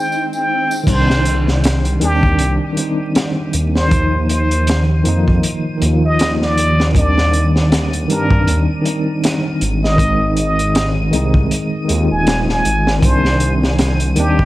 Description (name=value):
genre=trip hop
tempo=79 BPM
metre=4/4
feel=swing 56% on 16ths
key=C minor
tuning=A4 = 442 Hz
part: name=trumpet with plunger mute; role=melody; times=0.0-14.4 s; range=G4 to Ab5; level=-20 LUFS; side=equal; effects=tape echo
part: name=tine electric piano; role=accompaniment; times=0.0-14.4 s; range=Eb3 to F4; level=-19 LUFS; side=equal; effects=medium stereo tremolo
part: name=warbly tape-like pad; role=sustained chords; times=0.0-0.8 s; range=Eb3 to C5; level=-35 LUFS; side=left 2 dB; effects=none
part: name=swell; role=sound effects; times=0.0-0.9 s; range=none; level=-29 LUFS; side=equal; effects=none
part: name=flickering grainy texture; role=texture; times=0.0-14.4 s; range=Eb4 to Eb7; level=-31 LUFS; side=equal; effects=built-in reverb
part: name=tambourine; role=percussion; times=0.1-0.8 s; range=none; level=-33 LUFS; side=right 2 dB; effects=none
part: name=dark detuned saw bass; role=bass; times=0.9-14.4 s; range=Eb1 to G2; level=-16 LUFS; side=equal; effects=none
part: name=crunchy breakbeat drum kit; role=drums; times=0.9-14.4 s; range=crash cymbal, hi-hat, kick drum, snare drum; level=-18 LUFS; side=equal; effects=none
room=small room ambience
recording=vinyl crackle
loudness=-13 LUFS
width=side -16 dB against mid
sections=0.9-14.4 A section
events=swell 0.0-0.9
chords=0.0 Ab; 0.9 Cmadd9; 3.9 Ebsus2; 7.0 Cmadd9/Eb; 10.0 Ab; 13.0 Cmadd9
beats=0.12 | 0.88 1.64 2.40 3.15 | 3.91 4.67 5.43 6.19 | 6.95 7.71 8.47 9.23 | 9.99 10.75 11.51 12.27 | 13.03 13.79